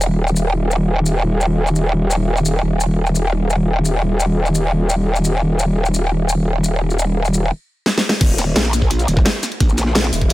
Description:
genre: dark technical drum and bass.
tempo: 172 BPM.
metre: 4/4.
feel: straight.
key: unclear.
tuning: A4 = 440 Hz.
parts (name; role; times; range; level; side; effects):
growl bass; bass; 0.0-10.3 s; Eb1 to Bb1; -16 LUFS; equal; chorus.
dubstep drum kit; drums; 0.0-10.3 s; crash cymbal, hi-hat, shaker, snare drum; -21 LUFS; equal; none.
crunchy breakbeat drum kit; drums; 8.2-10.3 s; hi-hat, snare drum; -31 LUFS; equal; none.
electronic kick drum; drums; 8.2-10.3 s; none; -15 LUFS; equal; none.
room: small room ambience.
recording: none.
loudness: -15 LUFS.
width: side -17 dB against mid.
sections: 0.0-8.2 A section; 8.2-10.3 B section.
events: drum fill 7.9-8.2; drop 8.2-10.3.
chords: none.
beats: 0.19 0.54 0.88 | 1.23 1.58 1.93 2.28 | 2.63 2.98 3.33 3.67 | 4.02 4.37 4.72 5.07 | 5.42 5.77 6.12 6.46 | 6.81 7.16 7.51 7.86 | 8.21 8.56 8.91 9.26 | 9.60 9.95 10.30.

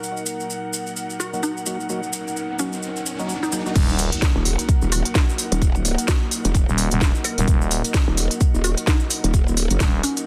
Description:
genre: bass house.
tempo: 129 BPM.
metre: 4/4.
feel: swing 58% on 16ths.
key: Eb minor.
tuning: A4 = 441 Hz.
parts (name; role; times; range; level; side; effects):
deep dark ambient pad; sustained chords; 0.0-10.3 s; Bb3 to Eb5; -35 LUFS; equal; chorus, built-in reverb, sidechain pumping.
maracas; percussion; 0.0-10.2 s; none; -33 LUFS; equal; none.
downlifter, riser and impact; sound effects; 1.9-5.6 s; none; -36 LUFS; equal; none.
airy breathy pad; texture; 0.0-10.3 s; Eb4 to Gb5; -34 LUFS; equal; chorus, sidechain pumping.
mallet-like synth pluck; melody; 1.2-10.2 s; Db4 to Bb4; -32 LUFS; equal; analog chorus, delay.
percussive organ stab; stabs; 1.3-3.7 s; Gb3 to Ab4; -34 LUFS; equal; analog chorus, sidechain pumping, delay.
growling FM bass; bass; 3.8-10.0 s; Eb1; -24 LUFS; equal; tube saturation, sidechain pumping.
electronic kick drum; drums; 3.8-9.9 s; none; -21 LUFS; equal; none.
garage drum kit; drums; 3.8-10.2 s; crash cymbal, hi-hat, snare drum; -27 LUFS; equal; low-pass filter on snare, low-pass filter on hats, low-pass filter on cymbals, low-pass filter on room.
growl bass; bass; 4.4-9.8 s; Eb1 to Gb1; -23 LUFS; equal; chorus, sidechain pumping.
room: digital ambience.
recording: dense, heavily limited modern master.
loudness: -21 LUFS.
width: mono.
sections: 0.0-3.8 A section; 3.8-10.3 B section.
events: filter sweep on ambient pad 0.0-3.8; riser 1.9-3.8; drop 3.8-10.3; impact 3.8-5.6.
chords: 0.0 Ebm.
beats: | 0.04 0.50 0.96 1.43 | 1.90 2.36 2.83 3.29 | 3.76 4.22 4.69 5.15 | 5.62 6.08 6.55 7.01 | 7.48 7.94 8.41 8.87 | 9.34 9.80.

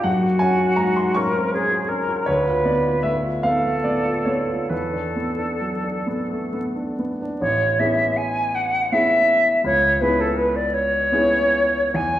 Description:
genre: classical, impressionist duo for flute and grand piano.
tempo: 43-57 BPM (dotted quarters).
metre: 6/8.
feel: rubato.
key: A major.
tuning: A4 = 439 Hz.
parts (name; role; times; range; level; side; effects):
silver concert flute; melody; 0.0-12.2 s; F#4 to G#5; -20 LUFS; equal; none.
warm baby grand piano; accompaniment; 0.0-12.2 s; A1 to C#6; -22 LUFS; equal; none.
room: wet recital hall reverb, RT60 1.5 s.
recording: heard from further back in the room, vinyl crackle.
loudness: -18 LUFS.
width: side -12 dB against mid.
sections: 0.0-7.4 A section; 7.4-12.2 B section.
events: none.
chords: 0.1 F#sus2; 2.3 Dm6; 4.7 E9sus4; 7.4 Amaj9; 9.6 C#m7.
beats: | 0.07 1.17 | 2.27 3.44 | 4.71 6.07 | 7.41 8.54 | 9.65 10.75 | 11.95.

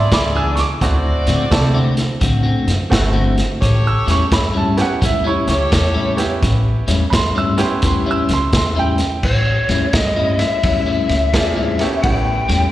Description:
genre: electric blues shuffle.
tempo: 86 BPM.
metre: 4/4.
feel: swing 65% on 8ths.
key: A mixolydian.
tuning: A4 = 440 Hz.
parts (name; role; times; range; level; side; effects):
bright upright piano; accompaniment; 0.0-12.5 s; A3 to E6; -21 LUFS; right 4 dB; slapback echo.
clear saxophone section; stabs; 0.0-6.3 s; E4 to D5; -22 LUFS; equal; slapback echo.
upright bass; bass; 0.0-12.7 s; G1 to C3; -18 LUFS; equal; none.
clean electric guitar; riff; 0.1-12.7 s; A2 to G#4; -20 LUFS; left 3 dB; lush chorus, slapback echo.
crunchy breakbeat drum kit; drums; 0.1-12.6 s; crash cymbal, hi-hat, kick drum, ride cymbal, snare drum; -20 LUFS; equal; none.
lead guitar through a small cranked amp; melody; 9.2-12.7 s; C#5 to G5; -20 LUFS; left 3 dB; overdrive, slapback echo.
room: little or no reverb.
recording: live gig heard through the venue's PA, recital hall reverb.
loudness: -14 LUFS.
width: side -14 dB against mid.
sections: 0.0-9.2 A section; 9.2-12.7 B section.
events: none.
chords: 0.0 E7; 0.8 D7; 3.6 A7.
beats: 0.12 | 0.82 1.52 2.22 2.92 | 3.62 4.32 5.02 5.72 | 6.42 7.12 7.83 8.53 | 9.23 9.93 10.63 11.34 | 12.04.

